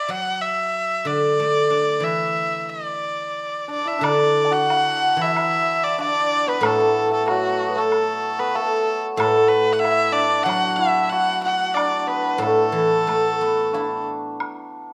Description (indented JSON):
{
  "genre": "chinese traditional, Chinese chamber ensemble",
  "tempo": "93 BPM",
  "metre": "4/4",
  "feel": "rubato",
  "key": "D gong mode",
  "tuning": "A4 = 440 Hz",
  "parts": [
    { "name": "rich erhu", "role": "melody", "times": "0.0-14.1 s", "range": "F#4 to F#5", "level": "-24 LUFS", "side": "equal", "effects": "none" },
    { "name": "guzheng", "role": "accompaniment", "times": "0.1-14.9 s", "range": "A2 to E4", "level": "-26 LUFS", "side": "equal", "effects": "none" },
    { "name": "hammered dulcimer", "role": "second line", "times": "3.7-14.9 s", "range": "F#3 to F#4", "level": "-27 LUFS", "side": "equal", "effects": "none" },
    { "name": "mellow hollow low xiao", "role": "second line", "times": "3.7-14.1 s", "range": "F#4 to A5", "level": "-28 LUFS", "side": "equal", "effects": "none" },
    { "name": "woodblock", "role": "percussion", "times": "4.0-14.5 s", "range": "none", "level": "-31 LUFS", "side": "equal", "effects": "none" }
  ],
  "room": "moderate recital hall reverb, RT60 1.4 s",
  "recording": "none",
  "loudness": "-20 LUFS",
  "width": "mono",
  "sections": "0.0-4.0 A section; 4.0-14.9 B section",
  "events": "none",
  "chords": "none",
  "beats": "0.10 0.74 | 1.38 2.03 2.69 3.35 | 4.02 4.68 5.34 5.98 | 6.62 7.26 7.90 8.54 | 9.18 9.82 10.46 11.11 | 11.75 12.40 13.06 13.73 | 14.39"
}